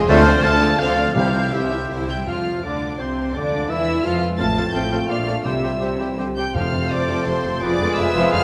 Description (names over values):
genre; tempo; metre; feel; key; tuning
classical; 168 BPM; 3/4; rubato; F major; A4 = 440 Hz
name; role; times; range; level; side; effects
bright small flute group; second line; 0.0-8.4 s; C5 to G6; -29 LUFS; equal; none
bright symphonic violin section; second line; 0.0-8.4 s; C4 to E5; -32 LUFS; equal; none
clear clarinet; second line; 0.0-8.4 s; C4 to A4; -32 LUFS; equal; none
rich symphonic viola section; accompaniment; 0.0-8.4 s; C3 to G4; -29 LUFS; equal; none
concert harp; arpeggios; 0.0-8.4 s; F2 to C6; -31 LUFS; equal; none
clear studio double bass section; bass; 0.0-8.4 s; F1 to F2; -29 LUFS; equal; none
rich symphonic cello section; bass; 0.0-8.4 s; C2 to F3; -29 LUFS; equal; none
clear symphonic violin section; melody; 0.1-8.4 s; C5 to A6; -31 LUFS; equal; none
clear oboe; second line; 0.1-8.4 s; Cb5 to A5; -31 LUFS; equal; none
clear trombone section; sustained chords; 0.1-8.4 s; A2 to A3; -30 LUFS; equal; none
mellow French horn section; sustained chords; 0.1-8.4 s; Cb4 to G4; -30 LUFS; equal; none
timpani; percussion; 1.2-2.8, 5.4-7.1 s; F2 to C3; -32 LUFS; equal; none
room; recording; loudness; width
wet concert hall reverb, RT60 2.4 s; none; -20 LUFS; mono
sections
0.0-2.3 A section; 2.3-8.4 B section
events
none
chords
0.1 Dm7; 1.2 C; 2.3 F; 3.3 Fdim7/D; 4.4 F/A; 5.1 Bbmaj7; 5.5 C; 6.6 F; 7.6 Fdim7